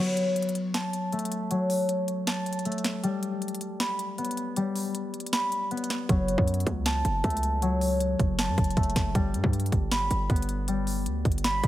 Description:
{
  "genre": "hip hop, trap",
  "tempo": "157 BPM",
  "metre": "4/4",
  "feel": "half-time",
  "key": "F# phrygian",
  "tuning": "A4 = 439 Hz",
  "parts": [
    { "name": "concert harp", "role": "arpeggios", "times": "0.0-11.7 s", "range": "F#3 to B5", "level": "-28 LUFS", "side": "left 1 dB", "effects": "low-pass filter, tape echo" },
    { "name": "trap drum kit", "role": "drums", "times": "0.2-11.7 s", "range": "hi-hat, kick drum, snare drum", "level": "-29 LUFS", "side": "equal", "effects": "none" },
    { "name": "hard-hitting 808-style bass", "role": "bass", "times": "6.1-11.7 s", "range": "F#1 to G2", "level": "-28 LUFS", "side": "right 1 dB", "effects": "none" }
  ],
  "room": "light reverb",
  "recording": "none",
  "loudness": "-25 LUFS",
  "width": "side -14 dB against mid",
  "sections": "0.0-11.7 A section",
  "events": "break 0.0-6.1; filter sweep on harp 0.0-11.7",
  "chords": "0.0 F#m; 3.0 G; 6.1 F#m; 9.2 G",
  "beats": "0.36 0.74 1.12 | 1.51 1.89 2.27 2.65 | 3.04 3.42 3.80 4.18 | 4.57 4.95 5.33 5.71 | 6.09 6.47 6.86 7.24 | 7.62 8.00 8.39 8.77 | 9.15 9.53 9.91 10.30 | 10.68 11.06 11.44"
}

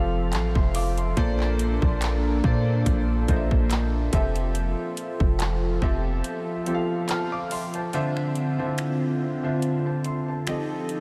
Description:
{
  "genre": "contemporary R&B",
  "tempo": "71 BPM",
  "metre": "4/4",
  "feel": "swing 54% on 16ths",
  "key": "F major",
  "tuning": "A4 = 437 Hz",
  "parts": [
    { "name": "warm concert grand piano", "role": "accompaniment", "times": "0.0-11.0 s", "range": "Bb2 to F6", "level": "-31 LUFS", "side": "equal", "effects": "lush chorus" },
    { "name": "warm analog pad", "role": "sustained chords", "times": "0.0-11.0 s", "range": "D3 to A4", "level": "-32 LUFS", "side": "equal", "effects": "chorus" },
    { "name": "warm 808-style bass", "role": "bass", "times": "0.0-6.2 s", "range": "F1 to Bb2", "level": "-27 LUFS", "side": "equal", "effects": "none" },
    { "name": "trap drum kit", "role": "drums", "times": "0.3-11.0 s", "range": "finger snaps, handclaps, hi-hat, kick drum", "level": "-29 LUFS", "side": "equal", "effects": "none" }
  ],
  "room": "moderate huge ambient reverb, RT60 6.4 s",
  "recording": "dreamy mix soaked in reverb",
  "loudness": "-25 LUFS",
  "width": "mono",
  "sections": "0.0-7.9 A section; 7.9-11.0 B section",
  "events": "kick muted 6.2-7.9, 7.9-11.0",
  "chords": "0.0 Fmaj7; 1.2 Bbmaj7; 4.1 Fmaj7; 7.9 Dm7; 10.5 F7",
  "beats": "0.33 | 1.17 2.02 2.86 3.71 | 4.55 5.40 6.24 7.09 | 7.93 8.78 9.62 10.47"
}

